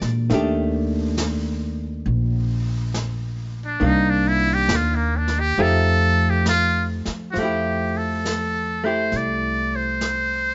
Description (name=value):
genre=jazz ballad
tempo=68 BPM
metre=4/4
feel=swing 67% on 8ths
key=F major from 7.4 s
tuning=A4 = 439 Hz
part: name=archtop guitar, miked and amplified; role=accompaniment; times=0.0-10.5 s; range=Eb3 to G4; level=-27 LUFS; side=equal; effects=none
part: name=upright bass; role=bass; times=0.0-10.5 s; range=Bb1 to Bb2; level=-25 LUFS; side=equal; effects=none
part: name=jazz brush drum kit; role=drums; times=0.0-10.5 s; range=brushed snare drum, hi-hat, snare drum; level=-34 LUFS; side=equal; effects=none
part: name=trumpet with metal mute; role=melody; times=3.7-10.5 s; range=Bb3 to D5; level=-24 LUFS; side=equal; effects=none
room=light reverb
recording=band playing live in one room, nothing above 7.7 kHz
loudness=-22 LUFS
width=mono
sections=0.0-7.4 A section; 7.4-10.5 B section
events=muted trumpet solo 0.0-7.4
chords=0.3 Ebmaj7#11; 3.8 Cm9; 5.6 F9; 7.4 Fmaj9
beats=| 0.31 1.18 2.06 2.94 | 3.82 4.70 5.58 6.47 | 7.37 8.25 9.13 10.01